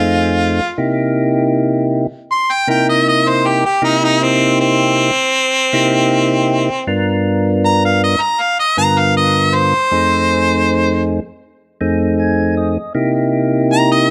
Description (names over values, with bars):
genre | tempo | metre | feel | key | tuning
blues | 79 BPM | 4/4 | straight | unclear | A4 = 441 Hz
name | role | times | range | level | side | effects
clear harmonica | melody | 0.0-14.1 s | C4 to C6 | -16 LUFS | equal | overdrive, plate reverb
percussive tonewheel organ | accompaniment | 0.0-14.1 s | F2 to G#5 | -17 LUFS | equal | slow rotary speaker, plate reverb
room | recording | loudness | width
wet studio ambience, RT60 0.5 s | none | -15 LUFS | mono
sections
0.0-14.1 A section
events
harmonica solo 0.0-14.1; tonewheel organ fill 11.8-13.0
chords
0.0 F7#9; 0.8 C7#9; 6.9 G7#9; 9.9 F7#9; 13.0 C7#9